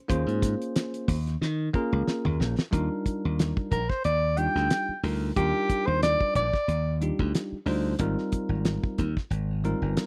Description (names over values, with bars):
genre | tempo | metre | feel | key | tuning
electric jazz fusion | 91 BPM | 4/4 | swing 55% on 16ths | unclear | A4 = 439 Hz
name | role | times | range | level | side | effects
bell-like tine electric piano | accompaniment | 0.1-10.1 s | G3 to C5 | -33 LUFS | equal | none
slap bass | bass | 0.1-9.9 s | G1 to Eb3 | -30 LUFS | equal | none
damped 70s drum kit | drums | 0.1-10.1 s | hi-hat, kick drum, snare drum, toms | -30 LUFS | equal | none
warm soprano saxophone | melody | 3.7-7.0 s | G4 to G5 | -28 LUFS | equal | slapback echo
room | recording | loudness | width
studio reverb | dry, close 1970s-style studio recording | -27 LUFS | mono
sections
0.0-2.7 A section; 2.7-10.1 B section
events
drum fill 1.4-2.7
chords
0.0 Eb13sus4; 2.7 Ebmaj7; 8.0 Abmaj13